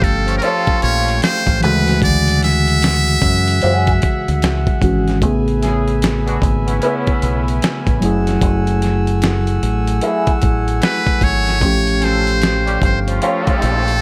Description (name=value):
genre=R&B, neo-soul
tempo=75 BPM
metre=4/4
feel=swing 62% on 16ths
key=A major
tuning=A4 = 440 Hz
part: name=trumpet with metal mute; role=melody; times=0.0-4.8, 10.8-14.0 s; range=A4 to E5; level=-21 LUFS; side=equal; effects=none
part: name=mellow tine electric piano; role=accompaniment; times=0.0-14.0 s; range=C#3 to G#4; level=-22 LUFS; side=equal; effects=phaser
part: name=pipe organ, foundations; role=sustained chords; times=0.0-14.0 s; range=A3 to E6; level=-28 LUFS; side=equal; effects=none
part: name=deep dub fingered electric bass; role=bass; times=0.0-14.0 s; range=F#1 to F#2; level=-21 LUFS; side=equal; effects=none
part: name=dusty soul sampler-style drum kit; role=drums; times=0.0-14.0 s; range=hi-hat, kick drum, snare drum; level=-21 LUFS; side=equal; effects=none
part: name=warm horn section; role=stabs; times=0.3-14.0 s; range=E#3 to A4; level=-27 LUFS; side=equal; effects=tape echo
part: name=electric guitar through a small old amp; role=second line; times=0.4-13.5 s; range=A3 to C#5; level=-23 LUFS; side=equal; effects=wah
room=light reverb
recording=none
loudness=-16 LUFS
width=mono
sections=0.0-14.0 A section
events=none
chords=0.0 A7alt; 1.6 Dmaj9#11; 5.2 Amaj9; 8.0 F#m9; 11.6 A7alt